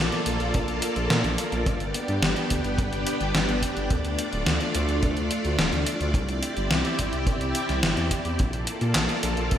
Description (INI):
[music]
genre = synthwave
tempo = 107 BPM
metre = 4/4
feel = straight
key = unclear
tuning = A4 = 440 Hz
[part]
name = string machine, full ensemble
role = sustained chords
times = 0.0-9.6 s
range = A3 to D5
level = -27 LUFS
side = equal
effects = ensemble chorus, vintage 12-bit sampler grit, sidechain pumping
[part]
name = dark detuned saw bass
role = bass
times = 0.0-9.6 s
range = D1 to Bb2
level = -28 LUFS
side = equal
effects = sidechain pumping
[part]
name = gated 80s digital drum machine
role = drums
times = 0.1-9.6 s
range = handclaps, hi-hat, snare drum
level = -27 LUFS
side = left 1 dB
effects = gated reverb, gated reverb snare, overdrive, studio reverb
[part]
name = kick drum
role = drums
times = 0.5-9.6 s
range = none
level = -28 LUFS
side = equal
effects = studio reverb
[sound]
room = moderate lush hall reverb, RT60 2.4 s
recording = bright 1980s-style digital production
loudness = -22 LUFS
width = side -10 dB against mid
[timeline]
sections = 0.0-9.6 A section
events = none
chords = 0.0 Bbmaj7; 1.7 G; 3.9 Dm; 6.1 Cadd9; 8.4 Bbmaj7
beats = 0.54 1.10 | 1.66 2.22 2.78 3.34 | 3.90 4.46 5.03 5.59 | 6.15 6.71 7.27 7.83 | 8.39 8.95 9.51